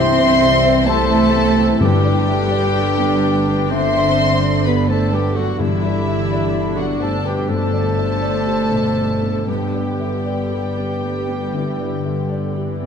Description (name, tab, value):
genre	cinematic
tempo	58-65 BPM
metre	4/4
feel	rubato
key	G major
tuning	A4 = 440 Hz
part	dark studio violin section	melody	0.0-12.9 s	E5 to C6	-25 LUFS	left 1 dB	none
part	mellow clarinet	second line	0.0-12.9 s	E4 to C5	-27 LUFS	left 2 dB	none
part	mellow hollow concert flute	second line	0.0-12.9 s	G4 to E5	-23 LUFS	left 2 dB	none
part	rich studio violin section	second line	0.0-12.9 s	E4 to C5	-27 LUFS	left 2 dB	none
part	felt-muted upright piano	accompaniment	0.0-12.9 s	C2 to E5	-26 LUFS	left 2 dB	none
part	warm studio viola section	accompaniment	0.0-12.9 s	C3 to D4	-27 LUFS	right 3 dB	none
part	mellow French horn section	sustained chords	0.0-12.9 s	B2 to D4	-26 LUFS	equal	none
part	concert harp	arpeggios	0.0-12.9 s	G2 to D6	-25 LUFS	left 8 dB	none
part	dark symphonic double bass section	bass	0.0-12.9 s	G1 to C2	-23 LUFS	right 4 dB	none
part	warm studio cello section	bass	0.0-12.9 s	E3 to C4	-23 LUFS	right 3 dB	none
part	timpani	percussion	1.8-7.0 s	G2	-24 LUFS	equal	none
room	wet scoring stage reverb, RT60 2.1 s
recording	dark, warm production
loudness	-15 LUFS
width	side -7 dB against mid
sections	0.0-12.9 A section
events	none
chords	0.0 C; 1.8 G; 5.6 Em7/G; 9.5 G